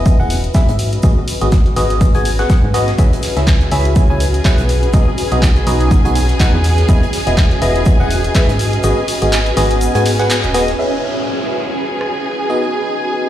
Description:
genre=piano house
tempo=123 BPM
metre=4/4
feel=swing 56% on 16ths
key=G# minor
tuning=A4 = 440 Hz
part: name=barking FM electric piano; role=riff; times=0.0-13.3 s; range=B3 to G#5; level=-19 LUFS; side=equal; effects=chorus, phaser, sidechain pumping, ping-pong delay
part: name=solid FM bass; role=bass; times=0.0-10.7 s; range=D#1 to G#2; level=-16 LUFS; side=equal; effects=sidechain pumping
part: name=granular cloud pad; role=texture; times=0.0-13.3 s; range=C#4 to D#5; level=-23 LUFS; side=left 1 dB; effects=built-in reverb, sidechain pumping
part: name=electronic kick drum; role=drums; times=0.1-8.5 s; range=none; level=-12 LUFS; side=equal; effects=none
part: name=loose indie drum kit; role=drums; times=0.1-10.8 s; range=hi-hat, shaker, snare drum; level=-31 LUFS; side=right 1 dB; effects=sidechain pumping on hats, high-pass filter on hats, high-pass filter on snare, sidechain pumping on perc, high-pass filter on perc, high-pass filter on room
part: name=punchy analog drum machine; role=drums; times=0.1-12.1 s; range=handclaps, hi-hat, rim click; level=-22 LUFS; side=equal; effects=none
part: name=warm studio violin section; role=sustained chords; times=3.0-13.3 s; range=G#4 to G#5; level=-23 LUFS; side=right 1 dB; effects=sidechain pumping
part: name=downlifter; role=sound effects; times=10.8-13.3 s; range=none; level=-27 LUFS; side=equal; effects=none
room=light reverb, small room reverb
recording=played on a big sound system in a bare room, stone room reverb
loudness=-12 LUFS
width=side -12 dB against mid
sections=0.0-10.8 A section; 10.8-13.3 B section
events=kick drops out 8.8-10.8; band accent 10.3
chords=0.0 Emaj7; 0.8 G#m7; 3.0 C#m; 4.7 B; 6.6 Emaj7; 8.6 G#m7; 10.8 C#m; 12.5 B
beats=0.06 0.55 | 1.03 1.52 2.01 2.50 | 2.98 3.47 3.96 4.45 | 4.94 5.42 5.91 6.40 | 6.89 7.38 7.86 8.35 | 8.84 9.33 9.81 10.30 | 10.79 11.28 11.77 12.25 | 12.74 13.23

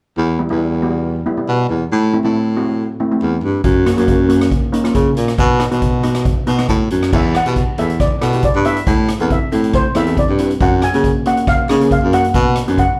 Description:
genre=calypso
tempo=138 BPM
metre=4/4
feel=swing 54% on 16ths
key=E minor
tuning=A4 = 440 Hz
part: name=warm baritone saxophone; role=bass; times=0.2-12.8 s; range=E2 to C#3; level=-18 LUFS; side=equal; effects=none
part: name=steel pan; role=accompaniment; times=0.4-12.9 s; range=G3 to B4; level=-22 LUFS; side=equal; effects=slapback echo
part: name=street-band drum kit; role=drums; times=3.6-12.9 s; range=crash cymbal, hi-hat, kick drum, rim click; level=-21 LUFS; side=equal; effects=none
part: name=steel pan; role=melody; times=7.2-13.0 s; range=C5 to G#5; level=-21 LUFS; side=equal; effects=slapback echo
room=light reverb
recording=live gig heard through the venue's PA, club ambience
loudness=-15 LUFS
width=mono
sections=0.2-7.1 A section; 7.1-13.0 B section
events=none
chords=0.2 Em; 1.9 Am; 3.6 F#; 5.4 B; 7.1 Em7; 8.9 Amadd9; 10.6 F#; 12.3 B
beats=| 0.18 0.61 1.04 1.48 | 1.91 2.35 2.78 3.21 | 3.65 4.08 4.52 4.95 | 5.39 5.82 6.26 6.69 | 7.13 7.56 8.00 8.43 | 8.87 9.30 9.74 10.17 | 10.61 11.04 11.48 11.91 | 12.35 12.78

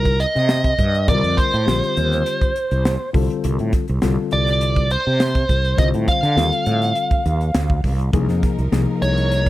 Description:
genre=electric jazz fusion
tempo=102 BPM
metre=4/4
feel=straight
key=unclear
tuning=A4 = 440 Hz
part: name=dark smooth lead guitar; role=melody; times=0.0-9.5 s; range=Bb4 to F5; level=-21 LUFS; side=right 1 dB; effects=overdrive, analog delay
part: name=mellow reed electric piano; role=accompaniment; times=0.0-9.5 s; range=C3 to C5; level=-23 LUFS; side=left 6 dB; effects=none
part: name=fretless electric bass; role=bass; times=0.0-9.5 s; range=Bb1 to D3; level=-20 LUFS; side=right 1 dB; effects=none
part: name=crisp fusion drum kit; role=drums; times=0.1-9.5 s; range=hi-hat, kick drum, snare drum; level=-21 LUFS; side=equal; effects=none
part: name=bright studio string section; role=sustained chords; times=8.1-9.5 s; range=F3 to Bb4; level=-30 LUFS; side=right 1 dB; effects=none
room=small room ambience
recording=none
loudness=-16 LUFS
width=side -16 dB against mid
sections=0.0-9.5 A section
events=none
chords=0.0 Cm9; 3.1 F69/C; 8.1 Db69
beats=0.49 | 1.08 1.67 2.25 2.84 | 3.43 4.02 4.61 5.20 | 5.78 6.37 6.96 7.55 | 8.14 8.72 9.31

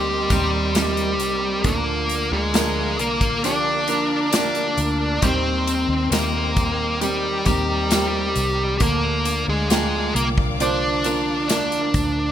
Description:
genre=pop ballad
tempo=67 BPM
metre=4/4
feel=straight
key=Eb major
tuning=A4 = 440 Hz
part: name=dark smooth lead guitar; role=melody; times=0.0-12.3 s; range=G3 to D5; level=-22 LUFS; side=equal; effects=overdrive
part: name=warm baby grand piano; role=accompaniment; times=0.0-12.3 s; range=D3 to G5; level=-28 LUFS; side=right 4 dB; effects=lush chorus
part: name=warm studio string section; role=sustained chords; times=0.0-12.3 s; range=Bb4 to D6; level=-31 LUFS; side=left 2 dB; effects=none
part: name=clean electric guitar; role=arpeggios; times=0.0-12.3 s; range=D3 to Bb4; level=-31 LUFS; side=left 6 dB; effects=wide subtle chorus
part: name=vintage muted fingered electric bass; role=bass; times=0.0-12.3 s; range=C2 to Eb2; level=-27 LUFS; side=equal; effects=none
part: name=modern studio drum kit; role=drums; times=0.3-12.2 s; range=hi-hat, kick drum, snare drum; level=-24 LUFS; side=left 1 dB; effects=gated reverb
part: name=tambourine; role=percussion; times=0.3-12.2 s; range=none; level=-35 LUFS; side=right 12 dB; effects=none
room=light reverb, studio ambience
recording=bright 1980s-style digital production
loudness=-18 LUFS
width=side -10 dB against mid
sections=0.0-12.3 A section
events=none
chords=0.0 Eb6; 1.6 Bb; 5.2 Eb6; 8.8 Bb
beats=0.75 | 1.65 2.54 3.44 4.33 | 5.23 6.12 7.02 7.91 | 8.81 9.71 10.60 11.50

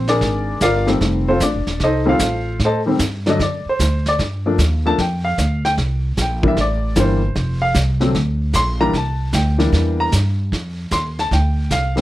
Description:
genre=jazz piano trio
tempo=152 BPM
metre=4/4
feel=swing 66% on 8ths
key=F mixolydian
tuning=A4 = 440 Hz
part: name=warm baby grand piano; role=melody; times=0.0-12.0 s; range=D3 to C6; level=-18 LUFS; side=left 1 dB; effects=none
part: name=upright bass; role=bass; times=0.0-12.0 s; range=Eb1 to A2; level=-19 LUFS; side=equal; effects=none
part: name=vintage brush drum kit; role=drums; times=0.1-12.0 s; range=brushed snare drum, hi-hat, kick drum, snare drum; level=-23 LUFS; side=right 1 dB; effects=none
room=light reverb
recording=none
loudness=-16 LUFS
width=side -15 dB against mid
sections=0.0-10.5 A section; 10.5-12.0 A section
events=grand piano solo 0.0-12.0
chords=0.0 Bb7; 1.0 F7; 2.6 Am7b5; 3.4 D7; 4.2 G7(no3); 5.8 C7; 7.4 F5; 8.2 Bbadd9; 8.9 C7; 10.5 F7(no3)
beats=0.22 0.61 | 1.01 1.41 1.81 2.21 | 2.60 3.00 3.40 3.79 | 4.19 4.59 4.99 5.38 | 5.78 6.17 6.57 6.97 | 7.36 7.76 8.15 8.55 | 8.94 9.34 9.73 10.12 | 10.52 10.91 11.31 11.70

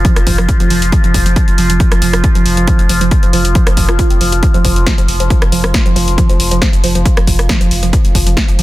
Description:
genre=driving peak-time techno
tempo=137 BPM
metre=4/4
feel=straight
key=unclear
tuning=A4 = 439 Hz
part: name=woody wave-folded pluck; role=riff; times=0.0-8.6 s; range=F3 to F4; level=-18 LUFS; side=right 3 dB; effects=tube saturation, lush chorus, sidechain pumping, tape echo
part: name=saturated sub bass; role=bass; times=0.0-8.6 s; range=F1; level=-16 LUFS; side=equal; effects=sidechain pumping, low-pass filter
part: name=overtone-sweeping drone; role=drone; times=0.0-8.6 s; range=F3 to F4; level=-19 LUFS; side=equal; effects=chorus, built-in reverb, sidechain pumping
part: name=electronic kick drum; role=drums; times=0.0-8.5 s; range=none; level=-12 LUFS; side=equal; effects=overdrive
part: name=techno drum kit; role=drums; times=0.0-8.6 s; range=hi-hat, rim click, snare drum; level=-18 LUFS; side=equal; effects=overdrive, sidechain pumping on hats
room=light reverb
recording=dense, heavily limited modern master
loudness=-9 LUFS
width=side -17 dB against mid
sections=0.0-8.6 A section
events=none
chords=0.0 F5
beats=0.05 0.49 | 0.92 1.36 1.80 2.24 | 2.67 3.11 3.55 3.99 | 4.43 4.87 5.30 5.74 | 6.18 6.62 7.05 7.49 | 7.93 8.37

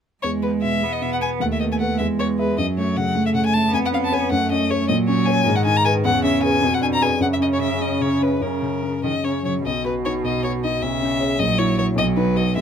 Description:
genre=quick classical-period movement for piano trio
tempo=103 BPM (dotted quarters)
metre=6/8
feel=rubato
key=E major, B major from 4.9 s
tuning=A4 = 440 Hz
part: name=rich violin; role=melody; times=0.2-12.6 s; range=A#4 to A#5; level=-23 LUFS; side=left 3 dB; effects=none
part: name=rich cello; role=second line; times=0.2-12.6 s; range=B2 to B3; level=-24 LUFS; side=right 6 dB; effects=none
part: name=dark grand piano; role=accompaniment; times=0.2-12.6 s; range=A#1 to E5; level=-21 LUFS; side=left 2 dB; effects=none
room=light reverb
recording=close, detailed microphones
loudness=-18 LUFS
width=side -8 dB against mid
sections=0.2-9.7 A section; 9.7-12.6 B section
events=none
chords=0.2 E; 1.4 B7/D#; 2.0 E; 2.6 F#m; 3.7 C#7/E#; 4.3 F#m; 4.9 F#/A#; 5.5 G#m; 6.0 C#m7/E; 6.6 Fdim7; 7.2 F#; 9.7 B; 10.8 C#m7/B; 11.4 F#7/A#; 12.0 B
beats=| 0.24 0.83 | 1.41 2.00 | 2.58 3.16 | 3.73 4.31 | 4.88 5.46 | 6.04 6.62 | 7.20 7.80 | 8.42 9.03 | 9.65 10.24 | 10.82 11.39 | 11.97 12.56

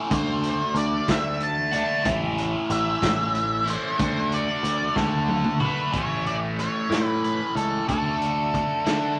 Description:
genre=psychedelic rock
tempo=62 BPM (dotted quarters)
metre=6/8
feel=straight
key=A major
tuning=A4 = 442 Hz
part: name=cranked stack guitar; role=riff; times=0.0-9.2 s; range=A2 to F#4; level=-30 LUFS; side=equal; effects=overdrive, phaser
part: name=octave-fuzz lead guitar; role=melody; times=0.1-9.1 s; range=A4 to A5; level=-28 LUFS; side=equal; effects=distortion
part: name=picked electric bass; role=bass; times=0.1-9.2 s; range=A1 to D3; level=-30 LUFS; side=equal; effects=none
part: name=raw garage drum kit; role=drums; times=0.1-9.0 s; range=hi-hat, kick drum, snare drum, toms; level=-32 LUFS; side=equal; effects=none
part: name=congas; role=percussion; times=0.1-5.9 s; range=none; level=-39 LUFS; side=equal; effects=none
room=moderate club reverb, RT60 0.7 s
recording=none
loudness=-24 LUFS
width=mono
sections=0.0-5.9 A section; 5.9-9.2 B section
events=lead electric guitar solo 0.0-5.9; drum fill 5.0-5.9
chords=0.1 D; 2.1 A; 4.0 D; 5.9 A; 7.9 D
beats=| 0.11 1.08 | 2.05 3.02 | 4.00 4.97 | 5.94 6.92 | 7.89 8.86

